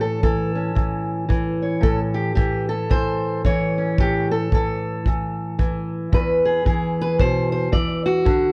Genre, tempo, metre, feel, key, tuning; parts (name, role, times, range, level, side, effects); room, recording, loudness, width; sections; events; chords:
acoustic country blues, solo or duo; 112 BPM; 4/4; swing 62% on 8ths; A major; A4 = 443 Hz
fingerpicked steel-string acoustic guitar; melody; 0.0-8.5 s; E2 to D5; -23 LUFS; equal; plate reverb
kick drum; drums; 0.2-8.4 s; -24 LUFS; equal
light reverb; dark, warm production; -21 LUFS; mono
0.0-8.5 A section
0.0 A; 6.1 E